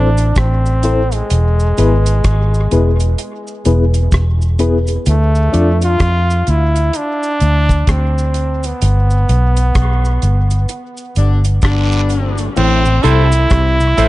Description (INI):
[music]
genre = dub reggae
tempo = 64 BPM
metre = 4/4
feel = swing 61% on 16ths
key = A minor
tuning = A4 = 440 Hz
[part]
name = brilliant trombone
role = melody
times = 0.0-14.1 s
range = G#3 to F4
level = -19 LUFS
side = equal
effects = dub echo
[part]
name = reed electric piano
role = stabs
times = 0.0-5.7, 13.0-14.1 s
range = B3 to E5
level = -20 LUFS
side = left 3 dB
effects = fast tremolo, dub echo
[part]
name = vintage muted fingered electric bass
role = bass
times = 0.0-14.1 s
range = E1 to F2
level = -13 LUFS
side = equal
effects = none
[part]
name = damped 70s drum kit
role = drums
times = 0.2-14.1 s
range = crash cymbal, hi-hat, kick drum, rim click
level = -19 LUFS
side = equal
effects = none
[part]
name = cabasa and guiro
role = percussion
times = 0.2-14.1 s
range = none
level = -31 LUFS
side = right 3 dB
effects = dub echo
[part]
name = mellow horn section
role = second line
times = 11.2-12.5 s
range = D3 to D4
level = -22 LUFS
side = left 4 dB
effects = dub echo
[part]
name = auto-wah clav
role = riff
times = 12.6-14.1 s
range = A2 to C3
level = -21 LUFS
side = left 4 dB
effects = overdrive, dub echo
[part]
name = electric guitar at the edge of break-up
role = accompaniment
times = 13.0-14.1 s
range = E4 to C5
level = -20 LUFS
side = right 5 dB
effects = wide subtle chorus, dub echo
[sound]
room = light reverb, studio ambience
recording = dark, warm production, nothing above 10.8 kHz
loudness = -11 LUFS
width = side -17 dB against mid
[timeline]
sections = 0.0-12.6 A section; 12.6-14.1 B section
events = break 0.0-12.6; band accent 8.8-12.6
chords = 0.0 Am; 1.3 E; 5.1 Dm; 8.8 G; 12.6 Am